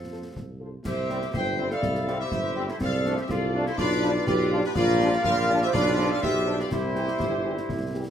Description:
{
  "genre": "military-style march for wind band",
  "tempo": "123 BPM",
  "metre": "2/4",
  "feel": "straight",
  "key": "C major",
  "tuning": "A4 = 438 Hz",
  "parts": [
    { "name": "clear woodwind section", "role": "second line", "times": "0.0-8.1 s", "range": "D4 to C5", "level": "-32 LUFS", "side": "left 3 dB", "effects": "none" },
    { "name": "warm trombone section", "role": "sustained chords", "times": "0.0-8.1 s", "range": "F3 to F4", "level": "-34 LUFS", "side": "right 3 dB", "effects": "none" },
    { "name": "mellow tuba", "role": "bass", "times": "0.0-8.1 s", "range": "G1 to F2", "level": "-28 LUFS", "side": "right 1 dB", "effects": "none" },
    { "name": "warm trumpet section", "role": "melody", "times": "0.1-8.0 s", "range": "B4 to G5", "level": "-32 LUFS", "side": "left 1 dB", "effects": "none" },
    { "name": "mellow French horn section", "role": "accompaniment", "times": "0.1-8.0 s", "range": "E3 to A4", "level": "-34 LUFS", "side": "left 2 dB", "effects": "none" },
    { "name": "concert snare drum, concert bass drum and clash cymbals", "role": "drums", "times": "0.4-8.1 s", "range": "none", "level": "-34 LUFS", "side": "left 1 dB", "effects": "none" },
    { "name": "mellow large flute ensemble", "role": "second line", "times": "0.8-7.9 s", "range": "G4 to E5", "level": "-33 LUFS", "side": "right 1 dB", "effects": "none" },
    { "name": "clear euphonium", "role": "second line", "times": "1.3-8.1 s", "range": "C4 to G4", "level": "-30 LUFS", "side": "right 1 dB", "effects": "none" }
  ],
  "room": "moderate large studio reverb, RT60 1.2 s",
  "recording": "none",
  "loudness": "-22 LUFS",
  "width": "side -9 dB against mid",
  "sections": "0.8-8.1 A section",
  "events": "none",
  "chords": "0.0 F; 0.8 C; 2.8 Dm7/C; 3.8 G7/B; 4.8 Gm7/Bb; 5.7 G7/B; 6.7 C",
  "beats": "0.36 | 0.85 1.34 | 1.82 2.31 | 2.80 3.29 | 3.78 4.27 | 4.76 5.25 | 5.74 6.22 | 6.71 7.20 | 7.69"
}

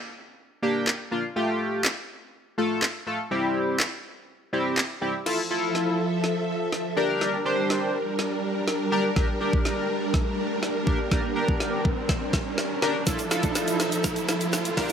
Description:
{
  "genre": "dance-pop",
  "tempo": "123 BPM",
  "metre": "4/4",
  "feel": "straight",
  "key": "F major",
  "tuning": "A4 = 440 Hz",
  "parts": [
    { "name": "chorused polysynth", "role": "accompaniment", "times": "0.6-14.9 s", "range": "G3 to C5", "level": "-26 LUFS", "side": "left 1 dB", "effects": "sidechain pumping" },
    { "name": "smooth R&B drum kit", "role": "drums", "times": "0.9-14.9 s", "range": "crash cymbal, handclaps, hi-hat, kick drum, snare drum", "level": "-26 LUFS", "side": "equal", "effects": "none" },
    { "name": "string machine, violas", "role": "sustained chords", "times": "5.3-14.9 s", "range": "F3 to E5", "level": "-28 LUFS", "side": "right 1 dB", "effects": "ensemble chorus, sidechain pumping" },
    { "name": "riser", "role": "sound effects", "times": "6.6-14.9 s", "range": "none", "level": "-34 LUFS", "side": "right 2 dB", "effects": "none" },
    { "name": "tube shaker", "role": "percussion", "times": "13.1-14.9 s", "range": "none", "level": "-37 LUFS", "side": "right 6 dB", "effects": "none" }
  ],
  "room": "light reverb",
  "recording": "high-pass filter",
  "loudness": "-23 LUFS",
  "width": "side -7 dB against mid",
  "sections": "0.0-5.3 A section; 5.3-14.9 B section",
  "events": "build-up 5.3-14.9; drum fill 5.3-14.9; riser 6.6-14.9",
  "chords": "0.0 Gm; 1.4 Fadd9/A; 3.3 C/G; 5.3 Fmaj7; 7.0 Gm; 13.1 Fmaj7",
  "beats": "0.39 0.87 | 1.36 1.85 2.34 2.82 | 3.31 3.80 4.29 4.78 | 5.26 5.75 6.24 6.73 | 7.21 7.70 8.19 8.68 | 9.16 9.65 10.14 10.63 | 11.12 11.60 12.09 12.58 | 13.07 13.55 14.04 14.53"
}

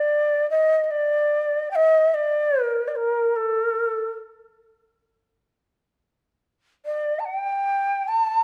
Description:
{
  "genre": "japanese traditional, Japanese chamber music",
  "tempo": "75 BPM",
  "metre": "2/4",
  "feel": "rubato",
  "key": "D miyako bushi",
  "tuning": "A4 = 444 Hz",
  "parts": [
    { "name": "breathy shakuhachi", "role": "solo", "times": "0.0-4.1, 6.9-8.4 s", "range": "A4 to A5", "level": "-22 LUFS", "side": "equal", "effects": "none" }
  ],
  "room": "light reverb",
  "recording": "none",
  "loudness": "-22 LUFS",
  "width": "mono",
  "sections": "0.0-1.7 A section; 1.7-8.4 B section",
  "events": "none",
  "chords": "none",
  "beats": "| 0.13 0.93 | 1.75 2.55 | 3.34 4.12 | 4.90 5.68 | 6.47 7.27 | 8.09"
}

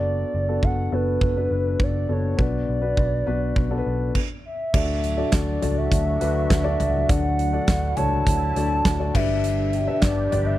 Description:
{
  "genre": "piano-driven pop",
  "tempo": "102 BPM",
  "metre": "4/4",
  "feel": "straight",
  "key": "D major",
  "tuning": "A4 = 438 Hz",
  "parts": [
    { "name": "hollow clarinet-like synth lead", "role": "melody", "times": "0.0-10.6 s", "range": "B4 to A5", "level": "-26 LUFS", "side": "right 1 dB", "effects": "chorus" },
    { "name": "dark concert grand piano", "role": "accompaniment", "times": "0.0-10.6 s", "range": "G2 to E5", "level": "-27 LUFS", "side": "left 5 dB", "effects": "none" },
    { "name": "vintage muted picked electric bass", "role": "bass", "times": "0.0-10.6 s", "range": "F#1 to D2", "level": "-25 LUFS", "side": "right 1 dB", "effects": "none" },
    { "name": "huge arena drum kit", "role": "drums", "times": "0.6-10.5 s", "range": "crash cymbal, hi-hat, kick drum, snare drum, toms", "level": "-24 LUFS", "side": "right 1 dB", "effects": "none" },
    { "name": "sweeping resonant pad", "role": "sustained chords", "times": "4.7-10.6 s", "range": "A2 to G4", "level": "-32 LUFS", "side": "right 2 dB", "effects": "chorus" }
  ],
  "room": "little or no reverb",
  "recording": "dry, close 1970s-style studio recording",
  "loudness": "-20 LUFS",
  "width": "side -14 dB against mid",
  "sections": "0.0-4.7 A section; 4.7-10.6 B section",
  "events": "stop 4.2-4.7",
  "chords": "0.0 D6/F#; 2.4 Bm; 4.7 D; 9.1 G",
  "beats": "| 0.04 0.63 1.22 1.80 | 2.39 2.98 3.57 4.15 | 4.74 5.33 5.92 6.50 | 7.09 7.68 8.26 8.85 | 9.44 10.03"
}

